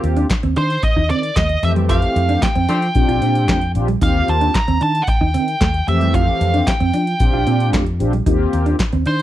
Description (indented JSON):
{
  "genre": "early-eighties boogie funk",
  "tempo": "113 BPM",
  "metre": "4/4",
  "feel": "straight",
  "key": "unclear",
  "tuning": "A4 = 440 Hz",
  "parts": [
    { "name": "mellow synth brass", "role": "accompaniment", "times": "0.0-8.8 s", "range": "E3 to G4", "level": "-21 LUFS", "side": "left 2 dB", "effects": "chorus" },
    { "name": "mellow electric guitar", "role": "riff", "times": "0.0-9.2 s", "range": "G3 to F4", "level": "-23 LUFS", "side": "right 4 dB", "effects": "lush chorus" },
    { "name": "fingered electric bass with an envelope filter", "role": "bass", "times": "0.0-9.2 s", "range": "Bb1 to F3", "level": "-19 LUFS", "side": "equal", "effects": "none" },
    { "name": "booming analog drum machine", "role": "drums", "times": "0.0-9.2 s", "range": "handclaps, hi-hat, kick drum, snare drum", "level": "-18 LUFS", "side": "equal", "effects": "none" },
    { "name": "nasal lead guitar with a parked wah", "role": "melody", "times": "0.6-9.2 s", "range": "C5 to Bb5", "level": "-20 LUFS", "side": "right 1 dB", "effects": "overdrive, slapback echo" },
    { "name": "clear horn section", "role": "second line", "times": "1.9-2.9 s", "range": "A3 to C5", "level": "-25 LUFS", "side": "left 2 dB", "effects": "none" }
  ],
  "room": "little or no reverb",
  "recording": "dry, close 1970s-style studio recording",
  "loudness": "-14 LUFS",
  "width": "side -13 dB against mid",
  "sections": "0.0-9.2 A section",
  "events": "band accent 1.9-4.0",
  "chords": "0.0 Eb69; 1.6 Fmaj9; 3.0 Bb69; 4.0 Eb69; 5.9 Fmaj9; 7.2 Bb69; 8.3 Eb69"
}